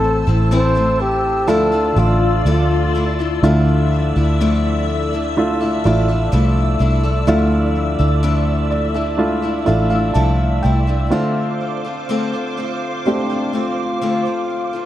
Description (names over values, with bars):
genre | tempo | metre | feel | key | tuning
pop | 62 BPM | 4/4 | straight | D minor | A4 = 440 Hz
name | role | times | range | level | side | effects
breathy flugelhorn | melody | 0.0-3.2, 12.6-14.9 s | D4 to C5 | -20 LUFS | equal | none
warm baby grand piano | accompaniment | 0.0-14.9 s | A2 to A5 | -21 LUFS | right 1 dB | none
glassy FM pad | sustained chords | 0.0-14.9 s | F4 to E6 | -24 LUFS | left 1 dB | ensemble chorus, built-in reverb
picked steel-string acoustic guitar | arpeggios | 0.0-14.9 s | A2 to A4 | -22 LUFS | left 4 dB | digital delay
vintage muted fingered electric bass | bass | 0.0-11.1 s | A1 to D2 | -17 LUFS | right 1 dB | none
room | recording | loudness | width
light reverb, small room ambience | dark, warm production | -15 LUFS | side -13 dB against mid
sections
0.0-3.4 A section; 3.4-11.1 B section; 11.1-14.9 C section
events
grand piano fill 8.2-11.1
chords
0.0 Am; 1.5 Dmadd9; 11.1 Dm7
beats
0.51 1.47 2.45 | 3.43 4.41 5.37 6.32 | 7.27 8.23 9.19 10.15 | 11.12 12.10 13.06 14.02